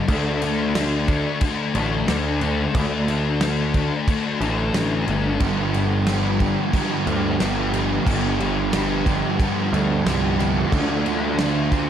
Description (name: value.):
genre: rock, shoegaze and dream pop.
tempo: 90 BPM.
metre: 4/4.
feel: straight.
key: G mixolydian.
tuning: A4 = 440 Hz.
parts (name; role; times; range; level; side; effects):
thick fuzz guitar; riff; 0.0-11.9 s; G2 to D4; -23 LUFS; left 4 dB; distortion, ensemble chorus.
fuzz picked electric bass; bass; 0.1-11.9 s; G1 to D2; -24 LUFS; right 1 dB; overdrive.
loose indie drum kit; drums; 0.1-11.9 s; crash cymbal, kick drum, snare drum; -26 LUFS; equal; none.
crunchy overdriven guitar; riff; 5.4-11.9 s; G2 to G4; -25 LUFS; right 12 dB; reverse reverb.
room: light reverb, studio ambience.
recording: faint mains hum.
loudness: -19 LUFS.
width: side -9 dB against mid.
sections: 0.0-11.9 A section.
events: none.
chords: 0.1 D5; 5.4 G7; 10.7 Dm.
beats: | 0.09 0.76 1.42 2.09 | 2.75 3.42 4.08 4.75 | 5.41 6.08 6.74 7.41 | 8.07 8.73 9.40 10.06 | 10.73 11.39.